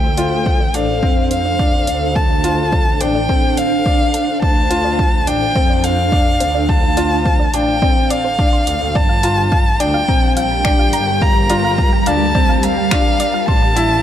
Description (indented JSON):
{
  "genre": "piano and strings electronica",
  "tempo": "106 BPM",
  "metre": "4/4",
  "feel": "straight",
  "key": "D minor",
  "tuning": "A4 = 442 Hz",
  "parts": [
    { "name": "dark violin", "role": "melody", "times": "0.0-14.0 s", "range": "F5 to Bb5", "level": "-18 LUFS", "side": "left 1 dB", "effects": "none" },
    { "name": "granular cloud pad", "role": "sustained chords", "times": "0.0-14.0 s", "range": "G3 to F5", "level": "-22 LUFS", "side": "right 2 dB", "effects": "built-in reverb, sidechain pumping" },
    { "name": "soft round pluck", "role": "arpeggios", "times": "0.0-13.9 s", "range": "C5 to D6", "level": "-27 LUFS", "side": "right 2 dB", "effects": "chorus, sidechain pumping, tape echo" },
    { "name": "clear chamber double bass section", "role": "bass", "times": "0.0-14.0 s", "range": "G1 to F2", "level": "-22 LUFS", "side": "equal", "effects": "tube saturation, sidechain pumping" },
    { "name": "clear upright piano", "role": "riff", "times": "0.2-14.0 s", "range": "C4 to F4", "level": "-21 LUFS", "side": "left 2 dB", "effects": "none" },
    { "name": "deep house drum kit", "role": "drums", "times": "0.2-13.9 s", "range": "finger snaps, hi-hat", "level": "-24 LUFS", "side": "equal", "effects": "overdrive" },
    { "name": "electronic kick drum", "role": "drums", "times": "0.5-13.6 s", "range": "none", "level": "-16 LUFS", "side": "equal", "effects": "overdrive" }
  ],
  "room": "light reverb, small room reverb",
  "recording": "none",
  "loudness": "-13 LUFS",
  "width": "side -10 dB against mid",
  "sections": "0.0-14.0 A section",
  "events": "build-up 0.0-14.0; filter sweep on synth arpeggio sound 0.0-14.0",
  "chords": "0.0 Dm7; 9.0 Gm7; 13.5 A5",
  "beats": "0.46 1.03 1.59 | 2.16 2.73 3.29 3.86 | 4.42 4.99 5.56 6.12 | 6.69 7.25 7.82 8.39 | 8.95 9.52 10.09 10.65 | 11.22 11.78 12.35 12.92 | 13.48"
}